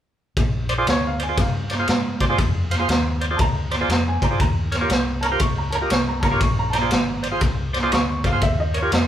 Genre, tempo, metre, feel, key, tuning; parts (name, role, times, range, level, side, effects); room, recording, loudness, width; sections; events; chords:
electric blues shuffle; 119 BPM; 4/4; swing 65% on 8ths; Bb mixolydian; A4 = 440 Hz
vintage muted fingered electric bass; bass; 0.4-9.1 s; Ab1 to Ab2; -26 LUFS; left 1 dB
raw garage drum kit; drums; 0.4-9.1 s; kick drum, ride cymbal, snare drum; -21 LUFS; equal
tonewheel organ; accompaniment; 0.7-8.9 s; F4 to F5; -25 LUFS; right 2 dB; slow rotary speaker, overdrive
clear upright piano; second line; 0.9-9.1 s; Db5 to Db6; -27 LUFS; equal
light reverb; band playing live in one room; -18 LUFS; side -10 dB against mid
0.4-9.1 A section
upright piano solo 0.4-9.1
0.4 Bb7; 4.4 Eb7; 6.4 Bb7; 8.4 Eb7